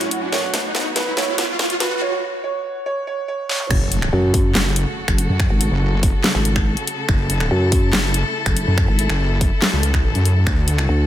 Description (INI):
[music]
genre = heavy wobble dubstep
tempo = 142 BPM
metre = 4/4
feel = half-time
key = F# minor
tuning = A4 = 440 Hz
[part]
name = warm concert grand piano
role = melody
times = 0.0-3.7 s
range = E4 to C#5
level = -25 LUFS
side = right 4 dB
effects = low-pass filter, tape echo
[part]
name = rich chamber string section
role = sustained chords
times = 0.0-11.1 s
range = A2 to A4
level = -26 LUFS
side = left 2 dB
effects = sidechain pumping
[part]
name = dubstep drum kit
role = drums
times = 0.0-10.9 s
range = crash cymbal, finger snaps, handclaps, hi-hat, snare drum, toms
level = -22 LUFS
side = equal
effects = high-pass filter on snare, high-pass filter on hats, high-pass filter on toms, high-pass filter on cymbals, high-pass filter on room
[part]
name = riser and impact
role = sound effects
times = 0.0-5.4 s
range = none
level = -26 LUFS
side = right 1 dB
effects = none
[part]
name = granular cloud pad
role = texture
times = 0.0-2.0 s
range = F#4 to F#5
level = -31 LUFS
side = equal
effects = built-in reverb, sidechain pumping
[part]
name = wobble bass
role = bass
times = 3.7-10.9 s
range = F#1 to F#2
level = -18 LUFS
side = equal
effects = chorus, overdrive
[part]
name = electronic kick drum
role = drums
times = 3.7-10.6 s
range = none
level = -19 LUFS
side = equal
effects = none
[part]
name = vowel-sweep wobble bass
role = bass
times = 4.1-11.1 s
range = F#1 to F#2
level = -18 LUFS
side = equal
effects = chorus, overdrive
[sound]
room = light reverb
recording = high-pass filter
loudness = -16 LUFS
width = side -12 dB against mid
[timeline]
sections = 0.0-3.7 A section; 3.7-11.1 B section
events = build-up 0.0-3.7; drum fill 0.0-2.0, 3.5; riser 0.0-2.0; filter sweep on grand piano 0.0-3.7; break 2.0-3.7; drop 3.7-11.1; impact 3.7-5.4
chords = 0.0 F#m; 10.5 D